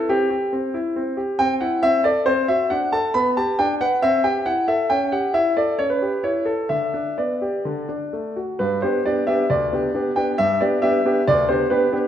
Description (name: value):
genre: classical-period piano sonatina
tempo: 136 BPM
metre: 4/4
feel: rubato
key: G major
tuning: A4 = 444 Hz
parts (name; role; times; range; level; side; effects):
- clear grand piano; solo; 0.0-12.1 s; D2 to B5; -18 LUFS; equal; none
room: moderate recital hall reverb, RT60 1.6 s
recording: minimal, uncompressed stereo recording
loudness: -18 LUFS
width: side -10 dB against mid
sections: 0.0-8.6 A section; 8.6-12.1 B section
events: none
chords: 0.0 C; 1.4 Am/C; 2.3 D7/C; 3.2 G/B; 4.0 Am7/C; 4.9 A7/C#; 6.7 G/D; 7.6 D; 8.6 G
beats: 0.09 0.53 0.96 | 1.40 1.84 2.28 2.72 | 3.16 3.60 4.03 4.47 | 4.91 5.35 5.79 6.24 | 6.71 7.18 7.65 8.12 | 8.60 9.05 9.50 9.94 | 10.39 10.83 11.27 11.70